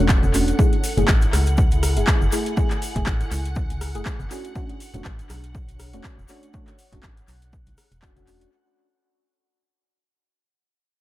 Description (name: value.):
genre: deep house.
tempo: 121 BPM.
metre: 4/4.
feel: swing 56% on 16ths.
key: unclear.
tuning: A4 = 440 Hz.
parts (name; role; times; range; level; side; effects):
deep mellow chord stab; stabs; 0.0-8.5 s; A3 to G#4; -27 LUFS; left 1 dB; chorus, phaser, sidechain pumping, dub echo.
organ-like FM bass; bass; 0.0-8.5 s; E1 to C#2; -23 LUFS; equal; sidechain pumping.
string machine, violins; texture; 0.0-8.5 s; F#5; -38 LUFS; equal; ensemble chorus, sidechain pumping.
warbly tape-like pad; texture; 0.0-8.5 s; D4 to G#5; -34 LUFS; equal; chorus, built-in reverb, sidechain pumping.
deep house drum kit; drums; 0.1-8.5 s; handclaps, hi-hat, rim click; -28 LUFS; equal; overdrive, tape echo.
electronic kick drum; drums; 0.1-8.1 s; none; -21 LUFS; equal; none.
tube shaker; percussion; 0.1-8.5 s; none; -37 LUFS; left 4 dB; none.
congas; percussion; 0.2-8.3 s; none; -30 LUFS; left 1 dB; none.
room: digital ambience.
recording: echo-heavy mix.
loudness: -18 LUFS.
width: side -16 dB against mid.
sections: 0.0-8.5 A section.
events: fade-out 0.0-8.5.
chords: 0.0 E13sus4; 0.6 F#m9; 4.3 E13sus4.